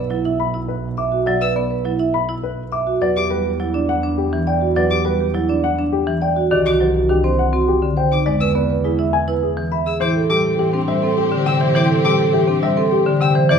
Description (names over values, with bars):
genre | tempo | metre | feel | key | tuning
classical, minimalist pattern music | 103 BPM | 3/4 | straight | A minor from 10.0 s | A4 = 438 Hz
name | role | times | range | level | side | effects
vibraphone with soft mallets | arpeggios | 0.0-13.6 s | D4 to E5 | -20 LUFS | right 5 dB | none
dark double bass | bass | 0.0-13.6 s | B1 to A2 | -25 LUFS | right 2 dB | none
marimba with hard mallets | accompaniment | 0.1-13.6 s | C3 to E4 | -21 LUFS | left 1 dB | none
dark concert grand piano | melody | 0.4-13.6 s | G4 to D6 | -23 LUFS | left 10 dB | none
rich violin | arpeggios | 1.4-13.6 s | D6 to E6 | -25 LUFS | left 5 dB | none
rich chamber violin section | sustained chords | 10.0-13.6 s | C4 to A4 | -26 LUFS | left 4 dB | none
room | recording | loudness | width
moderate recital hall reverb, RT60 1.5 s | minimal, uncompressed stereo recording | -16 LUFS | side -7 dB against mid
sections
0.0-10.0 A section; 10.0-13.6 B section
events
none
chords
0.0 B5; 3.0 Em7; 6.5 Cmadd9; 8.3 E7; 10.0 Am7